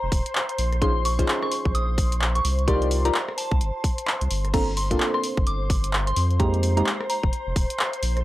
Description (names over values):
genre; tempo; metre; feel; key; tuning
UK garage, two-step garage; 129 BPM; 4/4; swing 60% on 16ths; unclear; A4 = 442 Hz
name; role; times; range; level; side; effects
soft synth bell; melody; 0.0-8.2 s; A5 to Eb6; -30 LUFS; equal; chorus, phaser, analog delay
soft string machine; sustained chords; 0.0-8.2 s; C5 to C6; -32 LUFS; left 1 dB; ensemble chorus, sidechain pumping
saturated sub bass; bass; 0.0-8.2 s; Eb1 to F2; -24 LUFS; equal; none
electronic kick drum; drums; 0.1-7.7 s; none; -24 LUFS; equal; none
punchy analog drum machine; drums; 0.1-8.2 s; crash cymbal, handclaps, hi-hat, rim click; -28 LUFS; equal; none
deep mellow chord stab; stabs; 0.8-6.8 s; Ab3 to D5; -27 LUFS; equal; chorus
room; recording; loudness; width
digital ambience; dry, gritty hardware recording; -21 LUFS; side -16 dB against mid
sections
0.0-8.2 A section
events
none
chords
0.0 F7sus4 (rootless); 0.6 Bbm11; 2.7 Cm11; 4.5 Gm11; 6.2 Fm11